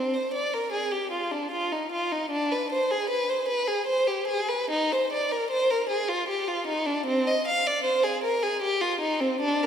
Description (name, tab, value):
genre	classical, baroque-style suite movement for unaccompanied violin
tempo	76 BPM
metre	3/4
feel	rubato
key	C minor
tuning	A4 = 440 Hz
part	rich violin	solo	0.0-9.7 s	C4 to F5	-24 LUFS	equal	none
room	wet church reverb, RT60 3.6 s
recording	minimal, uncompressed stereo recording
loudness	-24 LUFS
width	side -8 dB against mid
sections	0.0-9.7 A section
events	none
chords	none